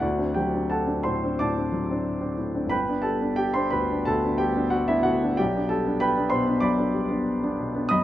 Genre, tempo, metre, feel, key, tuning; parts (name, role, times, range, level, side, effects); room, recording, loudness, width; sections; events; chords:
classical, romantic character piece for solo piano; 86-97 BPM; 4/4; rubato; A4 = 438 Hz
warm grand piano; solo; 0.0-8.0 s; G1 to D#6; -22 LUFS; equal
moderate recital hall reverb, RT60 1.5 s; close, detailed microphones; -22 LUFS; side -13 dB against mid
0.0-8.0 A section
0.0 D7; 2.7 G; 5.4 G/B